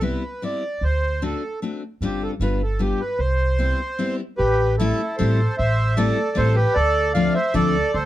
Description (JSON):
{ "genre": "musette waltz", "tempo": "152 BPM", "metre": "3/4", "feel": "straight", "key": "C major, A minor from 4.4 s", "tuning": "A4 = 440 Hz", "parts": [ { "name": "accordion", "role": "melody", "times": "0.0-8.1 s", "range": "E4 to F5", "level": "-22 LUFS", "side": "right 1 dB", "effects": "none" }, { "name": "picked steel-string acoustic guitar", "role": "accompaniment", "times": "0.0-7.7 s", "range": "F3 to F#4", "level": "-24 LUFS", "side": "left 4 dB", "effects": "none" }, { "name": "upright bass", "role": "bass", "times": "0.0-8.1 s", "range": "G1 to D2", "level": "-22 LUFS", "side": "equal", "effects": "none" } ], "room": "light reverb", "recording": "dark, warm production", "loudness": "-19 LUFS", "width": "side -14 dB against mid", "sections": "0.0-4.4 A section; 4.4-8.1 B section", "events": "break 4.0-4.4", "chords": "0.0 Cmaj7; 0.8 D7; 2.0 G7sus4; 2.4 G7; 3.2 Cmaj7; 4.4 Am7; 6.8 Dm7" }